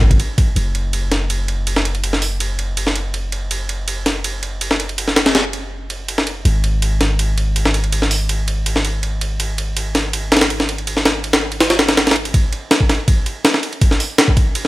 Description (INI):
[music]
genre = drum and bass, jungle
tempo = 163 BPM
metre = 4/4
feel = straight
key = unclear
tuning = A4 = 436 Hz
[part]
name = long sustained 808-style bass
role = bass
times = 0.0-12.3 s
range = F#1 to G#1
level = -20 LUFS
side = equal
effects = none
[part]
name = breakbeat sampler-style drum kit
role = drums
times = 0.0-14.7 s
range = hi-hat, kick drum, ride cymbal, snare drum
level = -16 LUFS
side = equal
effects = high-pass filter on cymbals, studio reverb, high-pass filter on kick, high-pass filter on snare, high-pass filter on hats
[sound]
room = little or no reverb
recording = none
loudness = -15 LUFS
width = side -18 dB against mid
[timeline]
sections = 0.6-12.3 A section; 12.3-14.7 B section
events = build-up 12.3-14.7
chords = none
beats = 0.20 | 0.56 0.93 1.30 1.67 | 2.04 2.40 2.77 3.14 | 3.51 3.88 4.24 4.61 | 4.98 5.35 5.72 6.08 | 6.45 6.82 7.19 7.56 | 7.92 8.29 8.66 9.03 | 9.40 9.77 10.13 10.50 | 10.87 11.24 11.61 11.97 | 12.34 12.71 13.08 13.45 | 13.81 14.18 14.55